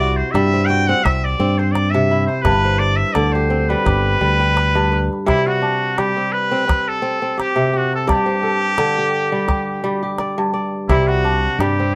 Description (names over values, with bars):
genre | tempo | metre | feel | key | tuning
west african traditional, West African string and xylophone music | 85 BPM | 4/4 | swing 55% on 16ths | C lydian | A4 = 439 Hz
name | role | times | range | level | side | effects
trumpet with straight mute | melody | 0.0-11.9 s | E4 to G5 | -22 LUFS | equal | none
kora | arpeggios | 0.0-11.9 s | G2 to G5 | -22 LUFS | equal | none
fingered electric bass | bass | 0.0-5.1, 10.9-11.9 s | G1 to G2 | -21 LUFS | equal | none
calabash | percussion | 0.0-11.8 s | none | -23 LUFS | equal | none
room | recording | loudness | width
light reverb | none | -18 LUFS | mono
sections
0.0-5.3 A section; 5.3-11.9 B section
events
muted trumpet solo 0.0-5.3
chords
0.0 C; 2.5 G; 5.3 C5; 8.1 G5; 10.9 C5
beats
0.35 1.05 1.75 | 2.46 3.16 3.86 4.57 | 5.27 5.97 6.68 7.38 | 8.08 8.79 9.49 10.19 | 10.89 11.60